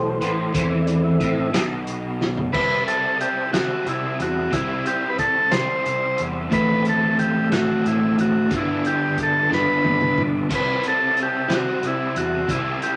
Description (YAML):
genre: psychedelic rock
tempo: 60 BPM (dotted quarters)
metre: 6/8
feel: straight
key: unclear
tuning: A4 = 440 Hz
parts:
  - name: tonewheel organ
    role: sustained chords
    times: 0.0-13.0 s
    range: E3 to E6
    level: -31 LUFS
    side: equal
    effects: overdrive, slow rotary speaker
  - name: crunchy overdriven guitar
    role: riff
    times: 0.0-13.0 s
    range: G2 to E4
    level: -26 LUFS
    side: equal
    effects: rotary speaker
  - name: fuzz fingered electric bass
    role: bass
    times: 0.0-12.8 s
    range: G1 to C3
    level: -32 LUFS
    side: equal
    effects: overdrive
  - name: vintage drum kit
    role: drums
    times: 0.2-13.0 s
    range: crash cymbal, hi-hat, kick drum, snare drum, toms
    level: -30 LUFS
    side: equal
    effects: none
  - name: overdriven combo organ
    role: melody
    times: 2.5-13.0 s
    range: E4 to C5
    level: -24 LUFS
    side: equal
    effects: none
room: wet studio reverb, RT60 0.8 s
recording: none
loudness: -21 LUFS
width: mono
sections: 0.0-2.5 A section; 2.5-13.0 B section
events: tonewheel organ solo 0.0-2.5; drum fill 2.2-2.5, 9.5-10.5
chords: 0.0 Am; 2.5 C6; 6.5 Am; 8.5 Gadd9; 10.5 C6